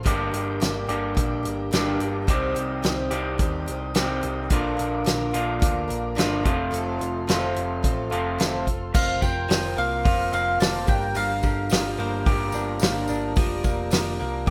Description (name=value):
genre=folk rock and heartland rock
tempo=108 BPM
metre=4/4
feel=straight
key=unclear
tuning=A4 = 443 Hz
part: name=picked twelve-string acoustic guitar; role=accompaniment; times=0.0-14.5 s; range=G2 to Bb4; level=-36 LUFS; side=equal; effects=none
part: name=mellow tonewheel organ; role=sustained chords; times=0.0-14.5 s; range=G4 to Eb6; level=-37 LUFS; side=equal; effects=slow rotary speaker
part: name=electric guitar through a small old amp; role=riff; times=0.0-14.5 s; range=F2 to G4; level=-30 LUFS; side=equal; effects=none
part: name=picked electric bass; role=bass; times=0.0-14.5 s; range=F1 to Eb2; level=-34 LUFS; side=equal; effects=none
part: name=natural country drum kit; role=drums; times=0.1-14.5 s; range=crash cymbal, hi-hat, kick drum, snare drum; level=-26 LUFS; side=equal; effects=none
part: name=bowl-back mandolin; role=melody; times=8.9-12.8 s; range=C5 to A5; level=-30 LUFS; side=equal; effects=analog delay
part: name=tambourine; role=percussion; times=8.9-14.3 s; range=none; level=-44 LUFS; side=equal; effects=none
room=light reverb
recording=rough home demo mix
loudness=-24 LUFS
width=mono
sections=0.0-8.9 A section; 8.9-14.5 B section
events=none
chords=0.1 Gm; 2.3 Cm; 4.5 Bb; 6.5 F; 8.9 Fsus4; 10.9 Gm7; 13.4 Bb6/F